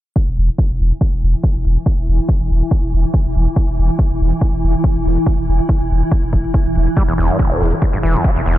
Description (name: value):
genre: driving peak-time techno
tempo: 141 BPM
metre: 4/4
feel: straight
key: unclear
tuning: A4 = 440 Hz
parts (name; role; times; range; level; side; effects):
- swarming drone; drone; 1.3-8.6 s; E3 to E4; -22 LUFS; right 1 dB; built-in reverb, sidechain pumping
- electronic hi-hat; drums; 0.2-8.5 s; none; -51 LUFS; left 1 dB; none
- electronic kick drum; drums; 0.2-8.3 s; none; -17 LUFS; equal; overdrive, studio reverb
- saturated sub bass; bass; 0.3-8.6 s; E1; -17 LUFS; equal; overdrive, sidechain pumping, low-pass filter
- overdriven acid bass; riff; 7.0-8.6 s; E1 to G3; -18 LUFS; equal; sidechain pumping, analog delay
room: little or no reverb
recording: low-pass filter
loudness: -14 LUFS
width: side -14 dB against mid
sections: 0.2-8.6 A section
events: filter sweep 0.2-8.6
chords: none